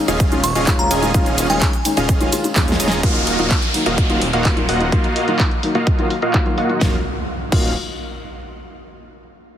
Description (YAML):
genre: EDM, festival progressive house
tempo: 127 BPM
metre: 4/4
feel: straight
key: Eb minor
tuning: A4 = 440 Hz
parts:
  - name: felt-muted upright piano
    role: accompaniment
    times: 0.0-7.7 s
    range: Eb3 to F4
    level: -23 LUFS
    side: left 2 dB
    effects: sidechain pumping, ping-pong delay
  - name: dense compressed supersaw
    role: riff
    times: 0.1-7.7 s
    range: Bb3 to Bb5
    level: -21 LUFS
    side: right 1 dB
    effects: sidechain pumping, low-pass filter, ping-pong delay
  - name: wide detuned saw bass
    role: bass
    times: 0.1-7.7 s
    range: Eb1 to Eb2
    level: -24 LUFS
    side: equal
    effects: chorus, sidechain pumping
  - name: big-room dance drum kit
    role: drums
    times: 0.1-7.6 s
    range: cabasa, crash cymbal, handclaps, hi-hat, ride cymbal, snare drum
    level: -24 LUFS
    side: equal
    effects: low-pass filter on hats, low-pass filter on perc, low-pass filter on cymbals, low-pass filter on snare
  - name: electronic kick drum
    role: drums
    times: 0.2-7.6 s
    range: none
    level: -18 LUFS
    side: equal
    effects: none
  - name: glassy synth bell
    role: melody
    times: 0.4-1.7 s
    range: Ab5 to Db6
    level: -25 LUFS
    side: equal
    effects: chorus, ping-pong delay
  - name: downlifter and impact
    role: sound effects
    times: 3.0-8.7 s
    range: none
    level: -26 LUFS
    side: equal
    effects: none
room: light reverb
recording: heavily compressed radio sound, multiband compression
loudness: -15 LUFS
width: side -10 dB against mid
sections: 0.0-3.0 A section; 3.0-6.8 B section; 6.8-8.7 C section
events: drop 0.0-3.0; drum fill 2.6-3.0; filter sweep on supersaw synth 3.0-6.8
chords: 0.0 Dbadd9/Eb; 3.0 Ebmadd9